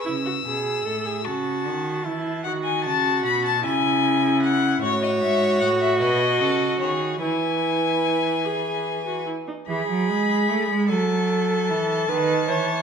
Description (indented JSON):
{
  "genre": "classical, baroque-style fugue for string quartet",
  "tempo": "50 BPM (dotted quarters)",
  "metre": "6/8",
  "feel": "straight",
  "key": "A major, E major from 4.8 s",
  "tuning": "A4 = 437 Hz",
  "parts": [
    { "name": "warm violin", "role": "melody", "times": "0.0-12.8 s", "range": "C#5 to E6", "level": "-25 LUFS", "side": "left 8 dB", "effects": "none" },
    { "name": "rich violin", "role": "second line", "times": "0.0, 4.8-9.2 s", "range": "G#4 to C#5", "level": "-27 LUFS", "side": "left 1 dB", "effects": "none" },
    { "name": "dark viola", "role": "accompaniment", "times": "0.0-12.8 s", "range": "D#4 to C#5", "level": "-25 LUFS", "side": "right 3 dB", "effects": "none" },
    { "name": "rich cello", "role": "bass", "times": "0.1-12.8 s", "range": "G#2 to A3+20c", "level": "-26 LUFS", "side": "right 3 dB", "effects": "none" }
  ],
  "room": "wet recital hall reverb, RT60 1.3 s",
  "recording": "minimal, uncompressed stereo recording",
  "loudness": "-20 LUFS",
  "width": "side -6 dB against mid",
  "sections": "0.1-9.7 A section; 9.7-12.8 B section",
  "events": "none",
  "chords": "0.1 A; 1.3 F#m7/C#; 2.5 B7; 3.6 C#m; 4.8 F#m; 6.0 B; 7.2 E; 10.9 F#m; 12.1 B7/D#"
}